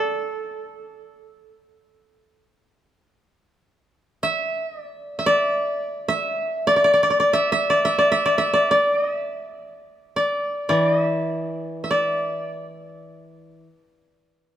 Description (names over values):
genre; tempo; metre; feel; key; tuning
japanese traditional, Japanese chamber music; free time; none; none; unclear; A4 = 436 Hz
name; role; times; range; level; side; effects
koto; melody; 0.0-13.7 s; A4 to E5; -20 LUFS; equal; none
koto; accompaniment; 10.7-13.6 s; E3; -27 LUFS; left 1 dB; none
room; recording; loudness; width
wet plate reverb, RT60 2.5 s; heard from further back in the room; -19 LUFS; side -11 dB against mid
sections
0.0-3.3 A section; 3.3-14.6 A section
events
none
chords
none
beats
free time